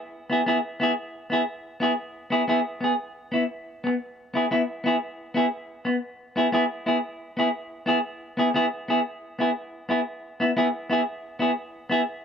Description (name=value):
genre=highlife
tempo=119 BPM (dotted quarters)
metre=12/8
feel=straight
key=E major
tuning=A4 = 440 Hz
part: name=semi-hollow electric guitar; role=solo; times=0.3-12.0 s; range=B3 to G#4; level=-23 LUFS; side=equal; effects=none
room=moderate spring reverb, RT60 2.2 s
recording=none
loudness=-23 LUFS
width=side -7 dB against mid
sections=0.0-4.5 A section; 4.5-12.2 B section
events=none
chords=0.0 E/B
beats=| 0.47 0.98 1.48 1.99 | 2.49 3.00 3.50 4.01 | 4.51 5.02 5.52 6.03 | 6.53 7.03 7.54 8.04 | 8.55 9.05 9.56 10.06 | 10.56 11.07 11.57